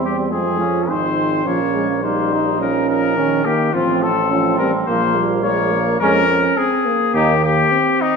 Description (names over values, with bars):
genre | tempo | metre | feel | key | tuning
classical, brass quintet | 105 BPM | 4/4 | rubato | unclear | A4 = 440 Hz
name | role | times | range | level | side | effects
mellow trumpet | melody | 0.0-8.2 s | Eb4 to Db5 | -19 LUFS | left 6 dB | none
clear flugelhorn | second line | 0.0-7.4 s | Bb3 to Eb4 | -24 LUFS | right 5 dB | none
mellow French horn | accompaniment | 0.0-7.3 s | Eb3 to Bb3 | -24 LUFS | left 2 dB | none
warm euphonium | accompaniment | 0.0-8.2 s | G3 to F4 | -21 LUFS | right 4 dB | none
clear tuba | bass | 0.0-7.6 s | Ab1 to F2 | -24 LUFS | right 4 dB | none
room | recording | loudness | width
wet scoring stage reverb, RT60 1.6 s | minimal, uncompressed stereo recording | -15 LUFS | side -5 dB against mid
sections
0.0-8.2 A section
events
none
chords
0.3 Fm; 1.5 Bbm; 3.7 F/A; 4.9 Bbm; 6.0 Db/F; 7.1 Eb